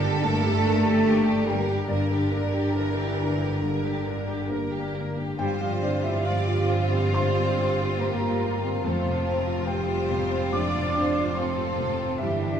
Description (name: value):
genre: cinematic, emotional film score for orchestra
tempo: 70 BPM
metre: 4/4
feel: uneven beats, rubato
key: unclear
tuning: A4 = 443 Hz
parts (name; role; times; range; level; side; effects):
- rich studio violin section; melody; 0.0-12.6 s; D4 to Bb4; -34 LUFS; equal; none
- mellow hollow silver concert flute; second line; 0.0-12.6 s; D5 to D6; -36 LUFS; right 1 dB; none
- rich studio violin section; second line; 0.0-12.6 s; F4 to D5; -34 LUFS; equal; none
- felt-muted upright piano; accompaniment; 0.0-12.6 s; F2 to D6; -30 LUFS; left 1 dB; none
- rich studio viola section; accompaniment; 0.0-12.6 s; D3 to D4; -34 LUFS; right 3 dB; none
- mellow French horn section; sustained chords; 0.0-12.6 s; D4 to D5; -31 LUFS; equal; none
- concert harp; arpeggios; 0.0-12.6 s; F2 to D5; -34 LUFS; left 5 dB; none
- clear studio cello section; bass; 0.0-12.6 s; D3 to D4; -29 LUFS; equal; none
- warm studio double bass section; bass; 0.0-12.6 s; F1 to G1; -29 LUFS; right 2 dB; none
room: moderate scoring stage reverb, RT60 1.4 s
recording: small room ambience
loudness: -22 LUFS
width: side -8 dB against mid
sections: 0.0-12.6 A section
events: none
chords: 0.0 Gm; 5.4 Csus4/G; 8.8 F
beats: 0.23 1.05 | 1.89 2.76 3.62 4.50 | 5.38 6.25 7.14 8.00 | 8.83 9.66 10.53 11.37 | 12.20